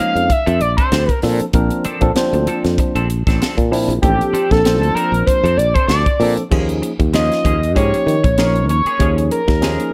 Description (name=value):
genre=electric jazz fusion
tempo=97 BPM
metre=4/4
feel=swing 55% on 16ths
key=unclear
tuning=A4 = 440 Hz
part: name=overdriven synth lead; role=melody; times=0.0-9.9 s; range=G4 to E#5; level=-20 LUFS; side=equal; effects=chorus
part: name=barky tine electric piano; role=accompaniment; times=0.0-9.9 s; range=E#3 to B#4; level=-23 LUFS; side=equal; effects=overdrive
part: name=semi-hollow electric guitar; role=stabs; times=0.0-9.8 s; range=E#3 to A4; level=-29 LUFS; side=equal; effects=analog chorus
part: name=crisp fusion drum kit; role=drums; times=0.0-9.9 s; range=crash cymbal, hi-hat, kick drum, snare drum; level=-21 LUFS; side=equal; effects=none
part: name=sustaining fretless electric bass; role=bass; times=0.2-9.8 s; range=A1 to Eb3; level=-20 LUFS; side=equal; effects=none
room=light reverb, small room ambience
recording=none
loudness=-16 LUFS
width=mono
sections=0.0-6.5 A section; 6.5-9.9 B section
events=analog synth lead solo 6.5-9.9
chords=0.3 A#maj9; 6.5 Eb9sus4